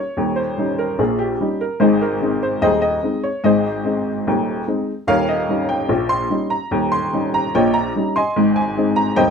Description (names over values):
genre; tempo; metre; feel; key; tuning
ragtime piano; 73 BPM; 2/4; straight; Ab major; A4 = 440 Hz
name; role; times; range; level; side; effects
warm upright piano; solo; 0.0-9.3 s; Eb1 to C6; -16 LUFS; left 1 dB; none
room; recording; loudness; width
light reverb; minimal, uncompressed stereo recording; -16 LUFS; side -6 dB against mid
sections
0.0-9.3 A section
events
none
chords
0.0 Eb7; 1.8 Ab; 5.1 Eb7; 8.4 Ab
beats
| 0.18 1.00 | 1.82 2.63 | 3.45 4.27 | 5.08 5.90 | 6.72 7.54 | 8.36 9.18